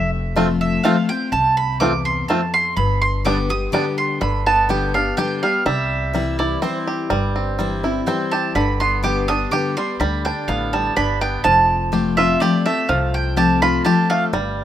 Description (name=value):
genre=bluegrass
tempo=124 BPM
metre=3/4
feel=straight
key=unclear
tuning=A4 = 440 Hz
part: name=picked steel-string acoustic guitar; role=accompaniment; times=0.0-14.6 s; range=E2 to G4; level=-22 LUFS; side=left 5 dB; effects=none
part: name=mandolin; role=stabs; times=0.0-14.2 s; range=C5 to Eb6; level=-20 LUFS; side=right 3 dB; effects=none
part: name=upright bass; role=bass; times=0.0-14.6 s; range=F1 to D2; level=-24 LUFS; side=equal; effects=none
part: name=bluegrass banjo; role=melody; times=0.4-14.6 s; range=D3 to G4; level=-22 LUFS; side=right 2 dB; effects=none
room=studio ambience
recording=rough home demo mix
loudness=-16 LUFS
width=side -11 dB against mid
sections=0.0-4.2 A section; 4.2-14.6 A section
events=mandolin solo 0.0-14.6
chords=0.0 F; 2.8 G; 5.7 C; 8.6 G; 11.4 F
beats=0.36 0.84 | 1.32 1.81 2.29 | 2.77 3.25 3.73 | 4.22 4.70 5.18 | 5.66 6.14 6.63 | 7.11 7.59 8.07 | 8.55 9.04 9.52 | 10.00 10.48 10.96 | 11.44 11.93 12.41 | 12.89 13.37 13.85 | 14.33